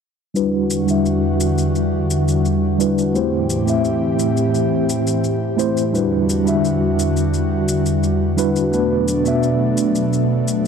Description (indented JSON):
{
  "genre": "sunset chillout",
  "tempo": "86 BPM",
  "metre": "4/4",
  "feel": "straight",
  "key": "E minor",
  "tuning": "A4 = 440 Hz",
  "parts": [
    { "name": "mellow tine electric piano", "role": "accompaniment", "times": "0.3-10.7 s", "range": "G3 to E5", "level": "-19 LUFS", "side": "equal", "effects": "medium stereo tremolo, auto-pan, low-pass filter, tape echo" },
    { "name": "airy breathy pad", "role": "sustained chords", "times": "0.3-10.7 s", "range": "E2 to G4", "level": "-19 LUFS", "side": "equal", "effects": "chorus" },
    { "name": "shaker", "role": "drums", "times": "0.4-10.6 s", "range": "none", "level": "-29 LUFS", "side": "left 4 dB", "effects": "overdrive, small room ambience" }
  ],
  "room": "moderate lush hall reverb, RT60 2.9 s",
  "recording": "dark, warm production",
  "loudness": "-16 LUFS",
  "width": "side -6 dB against mid",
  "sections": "0.4-10.7 A section",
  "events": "filter sweep on tine electric piano 0.4-10.7",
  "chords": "0.4 Em9; 3.1 Am7; 5.9 Em9; 8.7 Bm7"
}